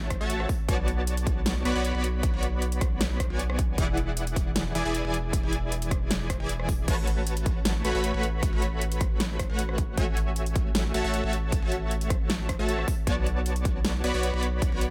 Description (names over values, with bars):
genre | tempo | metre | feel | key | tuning
future bass | 155 BPM | 4/4 | half-time | unclear | A4 = 440 Hz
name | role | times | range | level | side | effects
supersaw stab | riff | 0.0-14.9 s | E3 to B5 | -33 LUFS | equal | sidechain pumping, delay
saturated sub bass | bass | 0.0-14.9 s | E1 to B1 | -32 LUFS | equal | sidechain pumping
big-room dance drum kit | drums | 0.1-14.9 s | crash cymbal, hi-hat, rim click, snare drum | -35 LUFS | equal | none
electronic kick drum | drums | 0.1-14.7 s | none | -31 LUFS | equal | none
room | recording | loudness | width
little or no reverb | none | -27 LUFS | mono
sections
0.0-14.9 A section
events
none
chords
0.5 Bm7; 3.8 E7; 6.9 A69; 10.0 F#m9/A; 12.9 Bm7